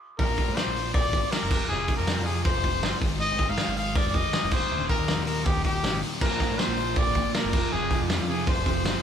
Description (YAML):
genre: indie rock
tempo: 160 BPM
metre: 4/4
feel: straight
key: unclear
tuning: A4 = 438 Hz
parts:
  - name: warm trumpet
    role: melody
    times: 0.2-9.0 s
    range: G4 to F5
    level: -29 LUFS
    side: left 3 dB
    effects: none
  - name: glockenspiel with hard plastic mallets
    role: second line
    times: 0.2-9.0 s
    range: G5 to F6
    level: -38 LUFS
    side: right 4 dB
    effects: none
  - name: thick fuzz guitar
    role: riff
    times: 0.2-9.0 s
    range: Eb2 to Bb3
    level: -32 LUFS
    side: left 4 dB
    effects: distortion
  - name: growling picked electric bass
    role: bass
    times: 0.2-8.9 s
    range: Eb1 to Bb2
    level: -31 LUFS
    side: equal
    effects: overdrive
  - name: loose indie drum kit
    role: drums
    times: 0.2-8.9 s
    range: crash cymbal, hi-hat, kick drum, snare drum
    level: -26 LUFS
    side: equal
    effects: none
  - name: raw garage guitar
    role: riff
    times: 6.2-9.0 s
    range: F2 to Bb3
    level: -31 LUFS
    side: right 5 dB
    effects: overdrive
room: light reverb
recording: band playing live in one room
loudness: -23 LUFS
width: side -8 dB against mid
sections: 0.2-9.0 A section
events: stop 0.0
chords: 0.2 Bb7; 1.5 F5; 3.0 Ab5; 4.5 Eb; 6.2 Bb7; 7.5 F5